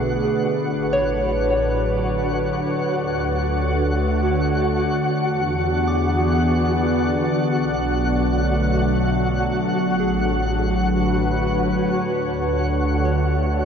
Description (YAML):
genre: ambient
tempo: 78 BPM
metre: 3/4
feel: straight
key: D lydian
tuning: A4 = 440 Hz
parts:
  - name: warbly tape-like pad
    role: sustained chords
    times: 0.0-13.7 s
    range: A2 to D5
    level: -22 LUFS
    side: right 1 dB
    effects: chorus, built-in reverb
  - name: soft synth bell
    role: arpeggios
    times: 0.0-13.7 s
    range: G#4 to D6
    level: -28 LUFS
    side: equal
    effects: chorus, diffuse ambient delay
  - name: round analog bass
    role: bass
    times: 0.0-13.7 s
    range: A1 to E2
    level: -25 LUFS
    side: equal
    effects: none
  - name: organ-like drone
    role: drone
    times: 0.0-13.7 s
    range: D3 to D4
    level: -26 LUFS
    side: left 2 dB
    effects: ensemble chorus, built-in reverb
  - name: twinkling granular texture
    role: texture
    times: 0.0-13.7 s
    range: F#4 to F#5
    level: -25 LUFS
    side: equal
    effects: built-in reverb
room: wet huge ambient reverb, RT60 6.9 s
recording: nothing above 7.5 kHz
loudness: -18 LUFS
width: side -7 dB against mid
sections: 0.0-13.7 A section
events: fade-out on synth bell 0.0-13.7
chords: 0.0 Bm7; 0.5 A69; 2.8 Dmaj7; 5.1 E7; 7.4 Bm7; 9.8 A69; 12.1 Dmaj7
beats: | 0.53 1.29 2.06 | 2.83 3.60 4.37 | 5.14 5.91 6.68 | 7.45 8.22 8.99 | 9.76 10.53 11.29 | 12.06 12.83 13.60